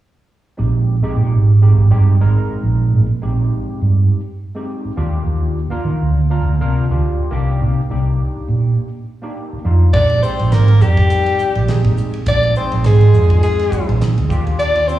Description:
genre	electric jazz fusion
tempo	103 BPM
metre	4/4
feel	swing 56% on 16ths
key	Bb mixolydian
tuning	A4 = 441 Hz
part	overdriven tine electric piano	accompaniment	0.6-15.0 s	G3 to Bb4	-26 LUFS	right 1 dB	analog chorus, plate reverb, slapback echo
part	mellow fretless electric bass	bass	0.6-15.0 s	Ab1 to Eb3	-13 LUFS	right 1 dB	lush chorus
part	breathy soprano saxophone	melody	9.9-15.0 s	G4 to D5	-18 LUFS	left 2 dB	plate reverb, slapback echo, tape echo
part	damped 70s drum kit	drums	9.9-15.0 s	crash cymbal, hi-hat, kick drum, ride cymbal, snare drum	-23 LUFS	equal	none
part	breathy tenor saxophone	second line	10.0-15.0 s	G3 to D4	-25 LUFS	right 1 dB	plate reverb, slapback echo
room	little or no reverb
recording	live gig heard through the venue's PA, recital hall reverb, studio reverb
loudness	-13 LUFS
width	side -14 dB against mid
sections	0.6-9.9 A section; 9.9-15.0 B section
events	none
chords	0.6 Bb13sus4; 5.0 Ebmaj7; 7.3 Cm9; 9.9 Bb13sus4; 14.3 Ebmaj7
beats	| 0.59 1.17 1.76 2.34 | 2.93 3.51 4.10 4.68 | 5.27 5.85 6.44 7.02 | 7.60 8.19 8.77 9.35 | 9.94 10.52 11.10 11.68 | 12.26 12.85 13.43 14.01 | 14.59

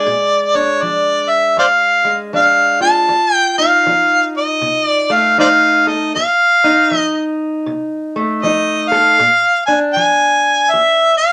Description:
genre	acoustic country blues, solo or duo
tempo	79 BPM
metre	4/4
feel	swing 62% on 8ths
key	Bb mixolydian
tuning	A4 = 439 Hz
part	warm harmonica	melody	0.0-11.3 s	C5 to A5	-14 LUFS	equal	none
part	fingerpicked steel-string acoustic guitar	accompaniment	0.0-11.3 s	F2 to A4	-22 LUFS	equal	none
room	moderate studio reverb, RT60 0.6 s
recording	none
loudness	-14 LUFS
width	mono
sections	0.0-11.3 A section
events	none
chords	0.0 Bb7; 3.1 F7; 9.2 Bb7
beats	| 0.06 0.82 1.58 2.34 | 3.10 3.87 4.63 5.39 | 6.15 6.92 7.68 8.44 | 9.20 9.97 10.73

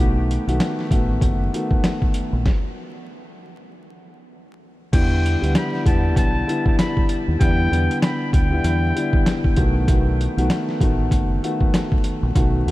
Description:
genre	hip hop, boom-bap hip-hop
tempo	97 BPM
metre	4/4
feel	swing 58% on 16ths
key	unclear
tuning	A4 = 440 Hz
part	dark concert grand piano	accompaniment	0.0-12.7 s	D3 to F#4	-24 LUFS	left 1 dB	high-pass filter, low-pass filter
part	deep dub fingered electric bass	bass	0.0-12.7 s	F#1 to E2	-21 LUFS	equal	none
part	boom bap sampler-style drum kit	drums	0.3-12.7 s	crash cymbal, hi-hat, kick drum, snare drum	-20 LUFS	equal	none
part	trumpet with straight mute	melody	4.9-9.4 s	G5 to B5	-29 LUFS	equal	high-pass filter, low-pass filter, ping-pong delay
room	light reverb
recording	vinyl crackle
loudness	-17 LUFS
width	side -17 dB against mid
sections	0.0-4.9 A section; 4.9-12.7 B section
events	stop 2.5-4.9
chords	0.0 B7; 4.9 Em7; 9.6 B7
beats	0.60 1.22 1.84 | 2.46 3.08 3.69 4.31 | 4.93 5.55 6.17 6.79 | 7.41 8.02 8.64 9.26 | 9.88 10.50 11.12 11.73 | 12.35

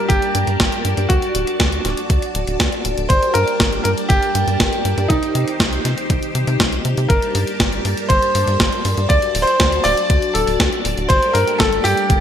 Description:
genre	italo disco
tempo	120 BPM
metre	4/4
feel	straight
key	G minor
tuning	A4 = 440 Hz
part	bright baby grand piano	melody	0.0-12.2 s	Eb4 to D5	-19 LUFS	equal	ping-pong delay
part	string machine, full ensemble	sustained chords	0.0-12.2 s	G3 to A5	-23 LUFS	equal	phaser, ensemble chorus
part	tight sequencer bass	bass	0.1-12.2 s	D1 to C3	-22 LUFS	equal	none
part	clean 12-bit digital drum machine	drums	0.1-12.2 s	hi-hat, snare drum	-21 LUFS	equal	gated reverb
part	electronic kick drum	drums	0.1-12.2 s	none	-19 LUFS	equal	none
room	moderate plate reverb, RT60 2.1 s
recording	bright 1980s-style digital production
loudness	-15 LUFS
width	side -9 dB against mid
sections	0.0-12.2 A section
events	none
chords	0.0 Gmadd9; 1.1 D; 3.1 Gmadd9; 5.1 Cm; 7.1 Gmadd9; 9.1 D; 11.1 Gmadd9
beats	0.10 0.60 | 1.10 1.60 2.10 2.60 | 3.10 3.60 4.10 4.60 | 5.10 5.60 6.10 6.60 | 7.10 7.60 8.10 8.60 | 9.10 9.60 10.10 10.60 | 11.10 11.60 12.10

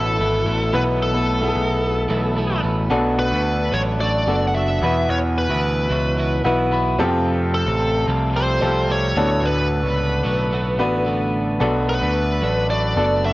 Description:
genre	pop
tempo	110 BPM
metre	4/4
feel	straight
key	unclear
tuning	A4 = 440 Hz
part	biting lead guitar	melody	0.0-13.3 s	A4 to F#5	-23 LUFS	equal	overdrive
part	warm baby grand piano	accompaniment	0.0-13.3 s	A2 to B5	-22 LUFS	left 1 dB	none
part	shimmering ambient pad	sustained chords	0.0-2.9, 12.6-13.3 s	B2 to B5	-35 LUFS	left 1 dB	none
part	twelve-string electric guitar	riff	0.0-13.3 s	E2 to G4	-26 LUFS	right 2 dB	none
part	modern bright picked electric bass	bass	0.0-13.3 s	F#1 to F2	-22 LUFS	equal	none
room	light reverb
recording	worn, warbling old tape, cassette tape, warbly pitch drift, nothing above 7.6 kHz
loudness	-17 LUFS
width	side -18 dB against mid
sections	0.0-2.9 A section; 2.9-13.3 B section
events	grand piano fill 6.4-7.3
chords	0.0 Esus4; 2.9 Bm7; 4.8 Esus2; 7.0 Fadd9; 9.2 D6; 11.6 Bm7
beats	0.19 | 0.74 1.28 1.83 2.37 | 2.91 3.46 4.00 4.54 | 5.09 5.63 6.18 6.72 | 7.26 7.81 8.35 8.89 | 9.44 9.98 10.53 11.07 | 11.61 12.16 12.70 13.24

